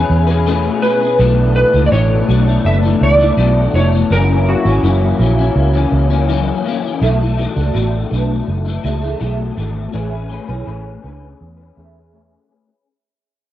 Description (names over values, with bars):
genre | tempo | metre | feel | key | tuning
indie pop | 82 BPM | 4/4 | straight | B dorian | A4 = 441 Hz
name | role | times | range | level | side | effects
electric slide guitar | melody | 0.0-5.5 s | F#4 to E5 | -17 LUFS | right 1 dB | ensemble chorus, cassette tape, tape echo
electric guitar through a small old amp | accompaniment | 0.0-12.9 s | F#2 to B4 | -19 LUFS | left 7 dB | ensemble chorus, warbly pitch drift, low-pass filter, cassette tape
lush unison pad | sustained chords | 0.0-7.0 s | B2 to G#4 | -22 LUFS | right 1 dB | chorus, cassette tape
vintage muted fingered electric bass | bass | 0.0-12.4 s | E#1 to E2 | -15 LUFS | right 1 dB | none
vibraphone with soft mallets | second line | 7.0-12.3 s | D4 to E5 | -26 LUFS | right 8 dB | ensemble chorus, cassette tape, tape echo
room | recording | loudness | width
light reverb | home recording on cassette | -12 LUFS | side -13 dB against mid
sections
0.0-7.0 A section; 7.0-12.9 B section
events
fade-out 7.0-12.9; filter sweep on clean electric guitar 7.0-12.9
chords
0.0 Amaj9; 1.2 Bm11; 4.1 F#7; 7.0 Bm11; 9.9 Amaj9